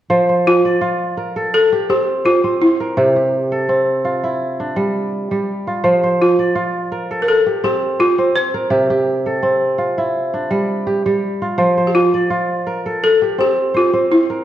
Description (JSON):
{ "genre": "west african traditional", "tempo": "84 BPM", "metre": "4/4", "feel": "swing 54% on 16ths", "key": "F major", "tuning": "A4 = 443 Hz", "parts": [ { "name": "kora", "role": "arpeggios", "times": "0.1-14.4 s", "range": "C3 to D5", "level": "-16 LUFS", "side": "right 1 dB", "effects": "none" }, { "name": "balafon", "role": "melody", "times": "0.5-14.4 s", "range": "E4 to C5", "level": "-15 LUFS", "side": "left 1 dB", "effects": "none" } ], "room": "wet recital hall reverb, RT60 1.6 s", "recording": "dark, warm production", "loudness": "-14 LUFS", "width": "side -11 dB against mid", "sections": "0.1-14.4 A section", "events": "none", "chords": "0.1 F; 3.0 C; 5.8 F; 8.7 C; 11.6 F" }